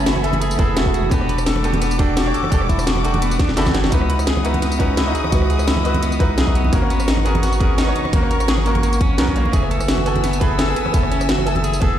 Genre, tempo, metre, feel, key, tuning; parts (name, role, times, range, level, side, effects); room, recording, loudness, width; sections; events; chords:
liquid drum and bass; 171 BPM; 4/4; swing 54% on 16ths; C# minor; A4 = 442 Hz
bright baby grand piano; accompaniment; 0.0-12.0 s; G3 to G#5; -23 LUFS; right 1 dB; ping-pong delay
warm studio string section; sustained chords; 0.0-12.0 s; A3 to E6; -28 LUFS; left 3 dB; sidechain pumping
electric guitar at the edge of break-up; arpeggios; 0.0-12.0 s; A#3 to B4; -24 LUFS; equal; ping-pong delay
saturated sub bass; bass; 0.0-12.0 s; E1 to C#2; -20 LUFS; equal
drum and bass drum kit; drums; 0.1-11.9 s; hi-hat, rim click, snare drum, tambourine; -23 LUFS; left 1 dB; overdrive
congas; percussion; 0.2-11.6 s; -27 LUFS; right 3 dB
electronic kick drum; drums; 0.6-11.9 s; -18 LUFS; equal; overdrive
light reverb, digital ambience; played on a big sound system in a bare room, large studio reverb; -15 LUFS; side -10 dB against mid
0.0-12.0 A section
drum fill 3.4-3.9
0.0 F#m11; 1.1 Em11; 3.9 C#m11; 6.7 G#m11; 9.5 F#m11